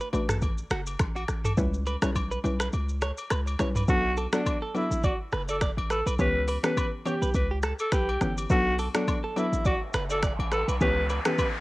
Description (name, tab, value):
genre	afrobeats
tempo	104 BPM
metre	4/4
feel	swing 55% on 16ths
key	B minor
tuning	A4 = 440 Hz
part	hollow square pluck	accompaniment	0.0-11.6 s	E3 to B4	-30 LUFS	left 1 dB	chorus, cassette tape
part	direct-recorded clean electric guitar	riff	0.0-11.5 s	F#4 to D5	-34 LUFS	right 3 dB	cassette tape
part	afro-pop drum kit	drums	0.0-11.5 s	finger snaps, hi-hat, kick drum, rim click, shaker, toms	-29 LUFS	equal	cassette tape
part	warm 808-style bass	bass	0.1-11.2 s	F#1 to C#2	-30 LUFS	equal	none
part	agogo bells and woodblock	percussion	0.1-11.5 s	none	-39 LUFS	left 4 dB	none
part	growling alto saxophone	melody	3.9-11.5 s	D4 to B4	-29 LUFS	equal	none
part	riser	sound effects	9.3-11.6 s	none	-37 LUFS	equal	none
room	digital ambience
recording	home recording on cassette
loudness	-24 LUFS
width	side -20 dB against mid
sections	0.0-3.9 A section; 3.9-11.6 B section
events	kick muted 2.7-3.9; riser 9.3-11.6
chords	0.0 Bm7; 1.6 C#m7b5; 3.9 Bm7; 6.2 C#m7b5; 8.5 Bm7; 10.8 C#m7b5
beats	0.42 1.00 | 1.58 2.15 2.73 3.31 | 3.88 4.46 5.04 5.62 | 6.19 6.77 7.35 7.92 | 8.50 9.08 9.65 10.23 | 10.81 11.38